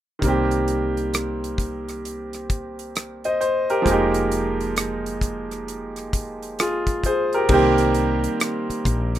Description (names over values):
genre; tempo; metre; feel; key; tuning
R&B, neo-soul; 66 BPM; 4/4; swing 63% on 16ths; unclear; A4 = 440 Hz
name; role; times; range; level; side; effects
clear grand piano; accompaniment; 0.2-9.2 s; Eb3 to Eb5; -21 LUFS; right 1 dB; none
woody fretless electric bass; bass; 0.2-9.2 s; F1 to C2; -27 LUFS; left 1 dB; none
damped 70s drum kit; drums; 0.2-9.2 s; crash cymbal, hi-hat, kick drum, rim click; -26 LUFS; equal; none
room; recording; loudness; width
little or no reverb; rough home demo mix; -20 LUFS; side -12 dB against mid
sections
0.2-7.5 A section; 7.5-9.2 B section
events
none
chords
0.2 Cm7; 3.9 Fm11; 7.5 Cm7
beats
| 0.22 1.13 2.04 2.95 | 3.86 4.77 5.68 6.59 | 7.50 8.41